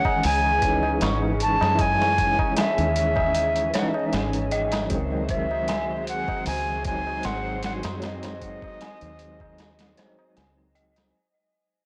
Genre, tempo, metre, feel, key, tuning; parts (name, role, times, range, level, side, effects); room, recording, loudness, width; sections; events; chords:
trip hop; 77 BPM; 4/4; straight; A4 = 441 Hz
reedy silver concert flute; melody; 0.0-10.3 s; D#5 to A5; -28 LUFS; equal; tape echo
overdriven tine electric piano; accompaniment; 0.0-11.2 s; D#3 to E4; -33 LUFS; equal; medium tremolo
muted studio string section; sustained chords; 0.0-11.1 s; C#3 to B#4; -37 LUFS; equal; vintage 12-bit sampler grit
dark detuned synth bell; arpeggios; 0.0-11.2 s; B#4 to C#6; -36 LUFS; equal; chorus, tape echo
dusty soul sampler-style drum kit; drums; 0.0-11.1 s; hi-hat, kick drum, snare drum; -32 LUFS; equal; overdrive
tabla; percussion; 0.1-11.1 s; -38 LUFS; equal
deep dub fingered electric bass; bass; 0.2-11.1 s; G#1 to F#2; -32 LUFS; equal
digital ambience; blown-out, overdriven recording, vinyl crackle, overdrive; -24 LUFS; mono
0.0-11.1 A section
fade-out 2.8-11.1
0.0 C#madd9; 4.9 G#7